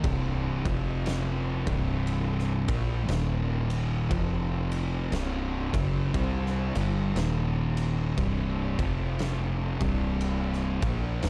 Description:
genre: stoner and doom metal.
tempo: 59 BPM.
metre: 4/4.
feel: swing 60% on 8ths.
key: C minor.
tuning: A4 = 439 Hz.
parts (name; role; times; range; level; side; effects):
thick fuzz guitar; riff; 0.0-11.3 s; C2 to C4; -36 LUFS; equal; distortion.
thick fuzz guitar; riff; 0.0-11.3 s; C2 to C4; -32 LUFS; equal; distortion.
plucky analog bass; bass; 0.0-11.3 s; C1 to C2; -34 LUFS; equal; overdrive.
oversized low-tuned drum kit; drums; 0.0-11.3 s; kick drum, ride cymbal, snare drum; -36 LUFS; equal; none.
room: small room ambience.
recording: dark, warm production.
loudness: -28 LUFS.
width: mono.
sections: 0.0-11.3 A section.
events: none.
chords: 0.0 C5; 0.6 F5; 1.6 C5; 3.1 Eb5; 4.1 F5; 5.1 C5; 7.2 Eb5; 8.2 C5; 8.7 F5; 9.7 C5.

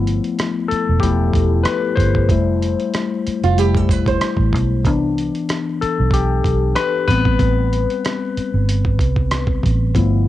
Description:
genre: R&B, neo-soul.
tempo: 94 BPM.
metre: 4/4.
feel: swing 53% on 16ths.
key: unclear.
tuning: A4 = 444 Hz.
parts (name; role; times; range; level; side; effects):
barky tine electric piano; accompaniment; 0.0-10.3 s; E3 to C5; -19 LUFS; left 6 dB; phaser, cassette tape.
vintage muted fingered electric bass; bass; 0.0-10.3 s; E1 to C2; -18 LUFS; right 1 dB; none.
dusty soul sampler-style drum kit; drums; 0.1-10.1 s; hi-hat, kick drum, rim click; -21 LUFS; right 1 dB; cassette tape.
flamenco guitar; second line; 3.4-4.8 s; F4 to C5; -22 LUFS; right 8 dB; cassette tape.
room: little or no reverb.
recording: home recording on cassette.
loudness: -15 LUFS.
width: side -14 dB against mid.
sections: 0.0-10.3 A section.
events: tine electric piano solo 0.0-10.3.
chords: 0.0 G13; 4.8 Cmaj7; 7.1 Am9.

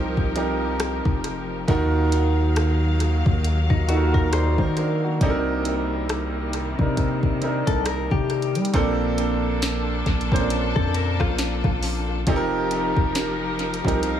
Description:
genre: contemporary R&B.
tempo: 68 BPM.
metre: 4/4.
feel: swing 58% on 16ths.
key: Bb major.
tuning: A4 = 442 Hz.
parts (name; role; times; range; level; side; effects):
warm concert grand piano; accompaniment; 0.0-14.2 s; Bb2 to D5; -24 LUFS; right 2 dB; analog delay.
rich studio string section; sustained chords; 0.0-14.2 s; C3 to F5; -30 LUFS; left 2 dB; none.
long sustained 808-style bass; bass; 0.0-14.2 s; F1 to G3; -25 LUFS; left 1 dB; none.
smooth R&B drum kit; drums; 0.2-14.2 s; hi-hat, kick drum, rim click, snare drum; -25 LUFS; equal; analog delay.
direct-recorded clean electric guitar; arpeggios; 3.7-12.2 s; Eb4 to C5; -29 LUFS; left 9 dB; analog delay.
room: light reverb, digital ambience.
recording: echo-heavy mix, studio ambience.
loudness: -20 LUFS.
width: side -10 dB against mid.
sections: 0.0-8.7 A section; 8.7-14.2 B section.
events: none.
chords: 0.0 F9sus4; 1.7 Ebmadd9; 5.2 Cm7; 8.7 Bbmaj9; 12.3 F9sus4.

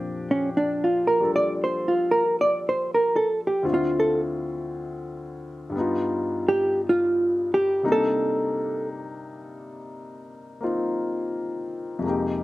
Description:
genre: jazz ballad.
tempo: 57 BPM.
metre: 4/4.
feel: swing 66% on 8ths.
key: unclear.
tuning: A4 = 440 Hz.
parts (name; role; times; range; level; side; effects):
clear grand piano; accompaniment; 0.0-12.4 s; D2 to A4; -28 LUFS; left 2 dB; slapback echo.
hollow-body jazz guitar; melody; 0.3-8.9 s; Db4 to D5; -21 LUFS; right 1 dB; slapback echo.
room: little or no reverb.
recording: recorded outdoors, with no room sound.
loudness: -22 LUFS.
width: side -17 dB against mid.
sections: 0.0-12.4 A section.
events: hollow-body jazz guitar solo 0.0-12.4.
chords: 0.0 Bb69; 3.6 Dm7; 5.7 G7b13; 7.8 Cm9.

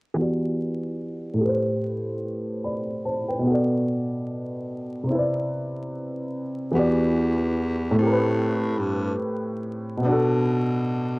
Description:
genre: hip hop.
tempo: 73 BPM.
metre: 4/4.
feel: swing 56% on 16ths.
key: E minor.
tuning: A4 = 443 Hz.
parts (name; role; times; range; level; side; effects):
dark upright piano; accompaniment; 0.1-11.2 s; A2 to B5; -23 LUFS; equal; low-pass filter.
growling baritone saxophone; bass; 6.8-11.2 s; E2 to B2; -25 LUFS; equal; none.
room: moderate studio reverb, RT60 0.6 s.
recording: worn, warbling old tape, cassette tape, vinyl crackle, warbly pitch drift.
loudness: -22 LUFS.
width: side -25 dB against mid.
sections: 0.2-11.2 A section.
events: filter sweep on upright piano 0.2-11.2.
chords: 0.2 Em7; 1.4 Am7; 3.5 Bm7; 5.1 Cmaj7; 6.8 Em7; 8.0 Am7; 10.0 Bm7.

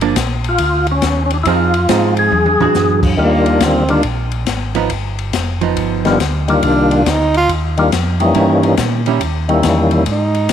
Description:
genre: soul jazz organ trio.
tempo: 139 BPM.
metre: 4/4.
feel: swing 66% on 8ths.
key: Eb major.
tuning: A4 = 441 Hz.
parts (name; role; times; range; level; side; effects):
archtop guitar, miked and amplified; accompaniment; 0.0-9.2 s; Eb3 to Ab4; -18 LUFS; right 11 dB; none.
mellow tonewheel organ; bass; 0.0-10.5 s; F1 to Bb2; -18 LUFS; equal; chorus vibrato, stopped rotary speaker.
open jazz drum kit; drums; 0.0-10.5 s; crash cymbal, hi-hat, kick drum, ride cymbal, snare drum, toms; -21 LUFS; left 6 dB; none.
percussive tonewheel organ; melody; 0.5-10.0 s; Eb3 to Ab4; -15 LUFS; left 2 dB; slow rotary speaker, overdrive, chorus vibrato.
clear tenor saxophone; melody; 3.2-4.0, 6.7-7.5, 10.1-10.5 s; Bb3 to F4; -17 LUFS; right 3 dB; none.
room: light reverb, small room ambience.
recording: 1960s-style stereo with parts hard left and right.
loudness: -12 LUFS.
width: side -9 dB against mid.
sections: 0.0-3.2 A section; 3.2-10.5 B section.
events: drum fill 2.3-2.7; tenor saxophone solo 3.2-10.5.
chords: 0.0 Gm7; 1.5 Fm7; 2.3 E9; 3.2 Ebmaj9; 4.9 G7b13; 6.6 Cm11; 8.3 Eb7b9.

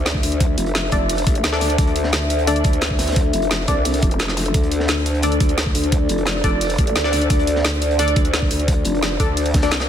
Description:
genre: dark technical drum and bass.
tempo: 174 BPM.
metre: 4/4.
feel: straight.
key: D minor.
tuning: A4 = 440 Hz.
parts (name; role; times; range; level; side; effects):
dark analog pad; sustained chords; 0.0-9.9 s; D4 to E5; -23 LUFS; left 1 dB; chorus, phaser, sidechain pumping.
growl bass; bass; 0.0-9.9 s; F1 to D2; -22 LUFS; equal; chorus, overdrive.
crunchy breakbeat drum kit; drums; 0.1-9.9 s; hi-hat, snare drum; -32 LUFS; equal; none.
drum and bass drum kit; drums; 0.1-9.9 s; hi-hat, snare drum; -23 LUFS; equal; overdrive.
electronic kick drum; drums; 0.1-9.6 s; none; -19 LUFS; equal; overdrive.
filtered dub chord stab; stabs; 0.9-9.7 s; D4 to D5; -25 LUFS; left 2 dB; chorus, ping-pong delay.
room: light reverb, digital ambience.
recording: dense, heavily limited modern master.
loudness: -16 LUFS.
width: side -9 dB against mid.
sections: 0.0-9.9 A section.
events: none.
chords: 0.0 Dm.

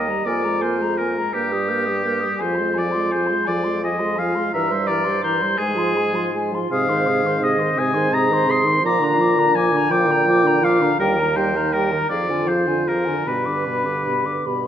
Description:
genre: classical, slow romantic movement for wind quintet.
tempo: 50-57 BPM (dotted quarters).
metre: 6/8.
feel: rubato.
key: unclear.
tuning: A4 = 441 Hz.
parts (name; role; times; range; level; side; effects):
silver concert flute; melody; 0.0-14.7 s; F5 to G6; -26 LUFS; left 5 dB; none.
clear oboe; second line; 0.0-14.5 s; G4 to C6; -21 LUFS; left 2 dB; none.
clear clarinet; accompaniment; 0.0-14.7 s; D4 to C5; -28 LUFS; right 6 dB; none.
dark French horn; accompaniment; 0.0-14.7 s; B2 to Bb3; -26 LUFS; right 1 dB; none.
mellow bassoon; bass; 0.0-14.7 s; Eb2 to Bb2; -23 LUFS; right 2 dB; none.
room: wet recital hall reverb, RT60 1.7 s.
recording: none.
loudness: -17 LUFS.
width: side -9 dB against mid.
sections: 0.0-14.7 A section.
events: none.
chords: 0.3 Bb5/F; 1.3 Eb/G; 2.4 Fm; 4.5 C7/G; 5.6 Fm/Ab; 6.7 Ab; 8.8 Bb; 11.0 Eb; 12.1 Ddim/F; 13.3 G.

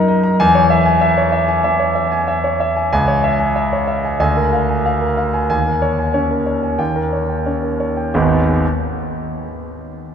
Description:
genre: classical, virtuoso piano study.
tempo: 93 BPM.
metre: 4/4.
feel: uneven beats, rubato.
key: unclear.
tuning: A4 = 445 Hz.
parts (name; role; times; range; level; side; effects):
clear concert grand piano; solo; 0.0-8.6 s; G#1 to A#5; -14 LUFS; equal; none.
room: wet cathedral reverb, RT60 5.1 s.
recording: recorded in a church or concert hall.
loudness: -14 LUFS.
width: side -7 dB against mid.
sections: 0.0-8.1 A section; 8.1-10.1 B section.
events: none.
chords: 0.4 C#m/E; 2.9 C#m; 4.2 A#7/D; 5.5 D#7sus4; 6.8 D#7; 8.1 G#m.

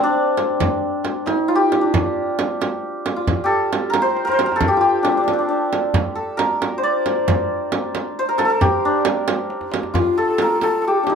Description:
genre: Persian modal ensemble.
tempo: 90 BPM (dotted quarters).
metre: 6/8.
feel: straight.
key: D dastgah shur.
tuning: A4 = 439 Hz.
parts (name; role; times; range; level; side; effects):
santur; melody; 0.0-11.2 s; C4 to D5; -18 LUFS; equal; none.
frame drum; percussion; 0.4-11.2 s; none; -24 LUFS; right 5 dB; none.
tombak; percussion; 0.4-11.2 s; none; -26 LUFS; left 2 dB; none.
breathy mellow ney; second line; 10.0-11.2 s; F4 to A4; -21 LUFS; left 4 dB; none.
room: wet small room reverb, RT60 0.6 s.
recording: none.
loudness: -17 LUFS.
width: side -6 dB against mid.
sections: 0.0-10.0 A section; 10.0-11.2 B section.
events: drum fill 4.2-4.6, 9.5-10.0.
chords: none.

